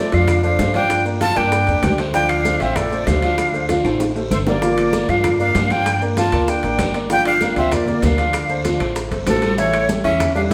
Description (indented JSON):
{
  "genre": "Afro-Cuban jazz",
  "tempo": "194 BPM",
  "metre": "4/4",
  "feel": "straight",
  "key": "D minor",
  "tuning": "A4 = 442 Hz",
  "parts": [
    { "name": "breathy bright jazz flute", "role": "melody", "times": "0.0-10.5 s", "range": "A4 to A5", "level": "-23 LUFS", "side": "equal", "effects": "none" },
    { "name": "warm tenor saxophone", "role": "second line", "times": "0.0-10.5 s", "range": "F3 to F4", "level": "-27 LUFS", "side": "equal", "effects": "none" },
    { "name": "warm baby grand piano", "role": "accompaniment", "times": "0.0-10.5 s", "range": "E3 to F5", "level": "-24 LUFS", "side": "equal", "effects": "none" },
    { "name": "upright bass", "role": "bass", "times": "0.1-10.5 s", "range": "G1 to G2", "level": "-25 LUFS", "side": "equal", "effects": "none" },
    { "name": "bongos", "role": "percussion", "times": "0.1-10.5 s", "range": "none", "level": "-30 LUFS", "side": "equal", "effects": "none" },
    { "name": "congas", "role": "percussion", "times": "0.1-10.5 s", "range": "none", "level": "-30 LUFS", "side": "equal", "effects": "none" },
    { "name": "guiro", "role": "percussion", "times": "0.1-10.5 s", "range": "none", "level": "-38 LUFS", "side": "equal", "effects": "none" },
    { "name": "maracas", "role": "percussion", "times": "0.1-10.5 s", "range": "none", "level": "-40 LUFS", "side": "equal", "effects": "none" },
    { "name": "timbales", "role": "percussion", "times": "0.1-10.5 s", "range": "none", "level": "-31 LUFS", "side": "equal", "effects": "none" },
    { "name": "claves", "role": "percussion", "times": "0.3-10.4 s", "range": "none", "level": "-41 LUFS", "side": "equal", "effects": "none" }
  ],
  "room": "wet large studio reverb, RT60 1.3 s",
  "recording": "band playing live in one room",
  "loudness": "-18 LUFS",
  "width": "mono",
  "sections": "0.0-10.5 A section",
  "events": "drum fill 3.8-4.6",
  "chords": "0.0 Dm7; 0.9 Gm7; 2.1 Dm7; 4.6 Gm7; 8.3 Dm7; 9.6 A7"
}